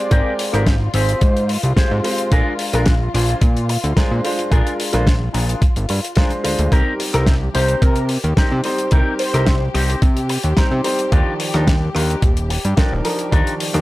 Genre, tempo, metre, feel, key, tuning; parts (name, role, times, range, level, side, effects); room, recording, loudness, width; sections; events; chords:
nu-disco, nu disco; 109 BPM; 4/4; straight; Bb mixolydian; A4 = 441 Hz
wide unison lead; melody; 0.0-1.5, 7.5-9.6 s; Bb4 to D5; -24 LUFS; equal; vintage 12-bit sampler grit, tape echo
warm baby grand piano; accompaniment; 0.0-13.8 s; Eb3 to G5; -23 LUFS; equal; sidechain pumping, tape echo
dark studio string section; sustained chords; 0.0-13.8 s; F4 to G4; -29 LUFS; left 3 dB; sidechain pumping
electric guitar with an envelope filter; riff; 0.1-13.8 s; C4 to C5; -27 LUFS; left 1 dB; wide subtle chorus, tape echo
fat analog bass; bass; 0.1-13.8 s; Eb1 to C3; -19 LUFS; equal
damped 70s drum kit; drums; 0.1-13.8 s; hi-hat, rim click, snare drum; -24 LUFS; left 1 dB; small room ambience
electronic kick drum; drums; 0.1-13.4 s; -15 LUFS; equal; small room ambience
studio reverb; dry, gritty hardware recording; -15 LUFS; side -18 dB against mid
0.0-13.8 A section
0.0 Abmaj9; 2.3 Bb7; 6.7 Cm7; 11.1 Ebmaj9